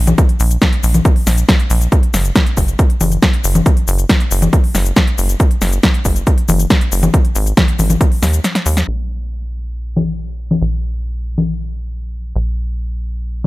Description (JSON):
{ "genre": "uplifting trance", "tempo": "138 BPM", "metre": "4/4", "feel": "straight", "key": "unclear", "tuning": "A4 = 440 Hz", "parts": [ { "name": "tight sequencer bass", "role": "bass", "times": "0.0-13.5 s", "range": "Gb1 to Eb2", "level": "-16 LUFS", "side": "equal", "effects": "sidechain pumping" }, { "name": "big-room dance drum kit", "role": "drums", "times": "0.1-13.5 s", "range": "congas, crash cymbal, hi-hat, shaker, snare drum", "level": "-16 LUFS", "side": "left 2 dB", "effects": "overdrive, sidechain pumping on hats, sidechain pumping on perc, sidechain pumping on cymbals" }, { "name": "electronic kick drum", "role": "drums", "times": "0.2-8.1 s", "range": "none", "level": "-12 LUFS", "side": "equal", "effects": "none" } ], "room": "little or no reverb", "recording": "low-pass filter", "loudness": "-12 LUFS", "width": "side -19 dB against mid", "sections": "0.0-8.9 A section; 8.9-13.5 B section", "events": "drop 0.0-8.9; break 8.4-8.9; drum fill 8.4-8.9; filter sweep 8.9-13.5", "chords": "none" }